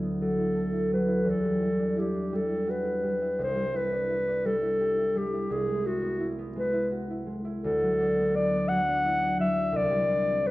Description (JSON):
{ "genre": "classical, impressionist duo for clarinet and harp", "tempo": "56 BPM (dotted quarters)", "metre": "6/8", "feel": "rubato", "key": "unclear", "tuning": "A4 = 442 Hz", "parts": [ { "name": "concert harp", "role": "accompaniment", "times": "0.0-10.5 s", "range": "C2 to E5", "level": "-29 LUFS", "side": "equal", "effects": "none" }, { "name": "warm clarinet", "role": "melody", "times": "0.2-10.5 s", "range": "F#4 to F#5", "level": "-26 LUFS", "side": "left 1 dB", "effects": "none" } ], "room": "wet recital hall reverb, RT60 1.3 s", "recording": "worn, warbling old tape, cassette tape, warbly pitch drift", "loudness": "-25 LUFS", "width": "side -18 dB against mid", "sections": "0.0-10.5 A section", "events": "none", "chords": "0.0 D69; 1.3 Em9; 3.4 Cadd9; 5.5 Eadd9/C; 7.6 D69; 9.8 Cadd9" }